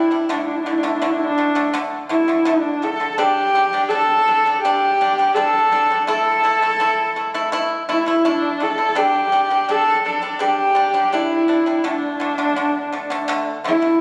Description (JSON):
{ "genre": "mongolian traditional, Mongolian folk", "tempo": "83 BPM", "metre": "4/4", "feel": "straight", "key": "unclear", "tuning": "A4 = 440 Hz", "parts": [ { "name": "rich horsehead fiddle", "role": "melody", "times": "0.0-14.0 s", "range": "D4 to A4", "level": "-19 LUFS", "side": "equal", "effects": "none" }, { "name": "pipa", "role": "arpeggios", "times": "0.0-14.0 s", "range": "D3 to E4", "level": "-26 LUFS", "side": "equal", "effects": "none" } ], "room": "wet scoring stage reverb, RT60 1.6 s", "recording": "recorded on a phone in the room, club reverb, compression", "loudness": "-18 LUFS", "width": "mono", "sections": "0.0-14.0 A section", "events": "none", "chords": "0.3 D5; 3.2 G5; 6.1 A5; 9.0 G5; 11.8 D5" }